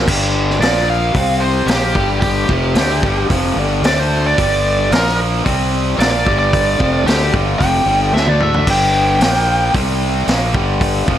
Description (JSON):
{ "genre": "blues rock power trio and southern rock", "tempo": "112 BPM", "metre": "4/4", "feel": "straight", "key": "unclear", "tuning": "A4 = 440 Hz", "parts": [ { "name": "biting overdriven guitar", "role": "riff", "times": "0.0-11.2 s", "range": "F2 to D4", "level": "-18 LUFS", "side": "equal", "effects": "spring reverb" }, { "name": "fuzz fingered electric bass", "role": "bass", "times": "0.0-11.2 s", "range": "F1 to D2", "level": "-19 LUFS", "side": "equal", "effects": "overdrive" }, { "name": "vintage drum kit", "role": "drums", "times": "0.1-11.2 s", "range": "crash cymbal, hi-hat, kick drum, snare drum, toms", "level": "-19 LUFS", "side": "equal", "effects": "none" }, { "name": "nasal lead guitar with a parked wah", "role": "melody", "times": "0.6-9.7 s", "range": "G4 to G5", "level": "-17 LUFS", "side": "equal", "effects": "overdrive, slapback echo, plate reverb" } ], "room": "moderate studio ambience, RT60 0.5 s", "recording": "none", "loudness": "-12 LUFS", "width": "side -11 dB against mid", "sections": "0.1-11.2 A section", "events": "lead electric guitar solo 0.1-11.2; drum fill 8.1-8.7", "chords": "0.1 G5; 0.6 Bb5; 1.2 C5; 1.7 G5; 3.8 D5; 4.4 G5; 4.9 Bb5; 5.5 C5; 6.0 G5; 8.1 D5; 8.7 G5; 9.2 Bb5; 9.7 C5; 10.3 G5", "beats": "| 0.09 0.62 1.16 1.70 | 2.23 2.77 3.31 3.84 | 4.38 4.92 5.45 5.99 | 6.53 7.06 7.60 8.13 | 8.67 9.21 9.74 10.28 | 10.81" }